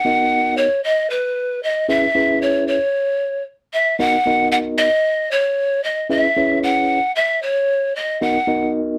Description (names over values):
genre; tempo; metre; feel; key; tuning
funk; 114 BPM; 4/4; swing 56% on 16ths; C# dorian; A4 = 440 Hz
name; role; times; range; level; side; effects
breathy mellow pan flute; melody; 0.0-8.7 s; B4 to F#5; -19 LUFS; equal; none
mellow tine electric piano; accompaniment; 0.0-9.0 s; B3 to E5; -22 LUFS; equal; none
room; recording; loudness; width
light reverb; dry, close 1970s-style studio recording; -18 LUFS; mono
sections
0.0-9.0 A section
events
none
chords
0.0 Bmaj7; 1.9 C#m7; 4.0 Bmaj7; 6.1 C#m7; 8.2 Bmaj7